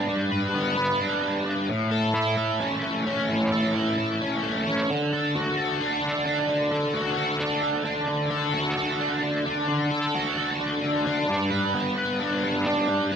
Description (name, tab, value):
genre	rock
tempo	262 BPM (eighths)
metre	7/8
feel	straight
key	unclear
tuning	A4 = 441 Hz
part	crunchy overdriven guitar	solo	0.0-13.2 s	A2 to B4	-23 LUFS	equal	rotary speaker
room	moderate spring reverb, RT60 1.6 s, digital ambience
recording	lossy compression artefacts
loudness	-23 LUFS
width	side -7 dB against mid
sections	0.0-13.2 A section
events	none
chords	0.0 G; 1.7 A; 4.9 D; 11.3 G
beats	| 0.09 0.32 0.54 0.77 1.00 1.23 1.46 | 1.69 1.92 2.15 2.37 2.60 2.83 3.06 | 3.29 3.52 3.75 3.97 4.20 4.43 4.66 | 4.89 5.12 5.34 5.57 5.80 6.03 6.26 | 6.49 6.72 6.95 7.17 7.40 7.63 7.86 | 8.09 8.32 8.54 8.77 9.00 9.23 9.46 | 9.69 9.92 10.14 10.37 10.60 10.83 11.06 | 11.29 11.52 11.74 11.97 12.20 12.43 12.66 | 12.89 13.12